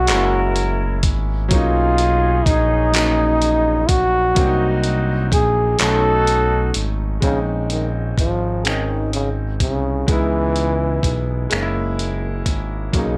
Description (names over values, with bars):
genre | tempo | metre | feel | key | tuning
slow six-eight R&B | 42 BPM (dotted quarters) | 6/8 | straight | Bb minor | A4 = 440 Hz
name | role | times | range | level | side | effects
warm trombone | melody | 0.0-13.2 s | Db3 to A4 | -22 LUFS | equal | none
clear concert grand piano | accompaniment | 0.0-13.2 s | F#3 to Fb4 | -27 LUFS | equal | none
smooth gliding synth bass | bass | 0.0-13.2 s | Gb1 to Db2 | -24 LUFS | equal | none
clear horn section | stabs | 0.1-6.7 s | C4 to Bb4 | -30 LUFS | equal | none
dusty soul sampler-style drum kit | drums | 0.1-13.2 s | finger snaps, handclaps, hi-hat, kick drum | -23 LUFS | equal | none
room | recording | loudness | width
light reverb | none | -18 LUFS | mono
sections
0.0-7.2 A section; 7.2-13.2 B section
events
kick muted 5.8-7.2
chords
0.1 Gb9; 1.5 Bmaj9; 4.4 Cm7b5; 5.8 B13; 7.2 Bbm11; 10.1 Dbm7; 11.5 Gb9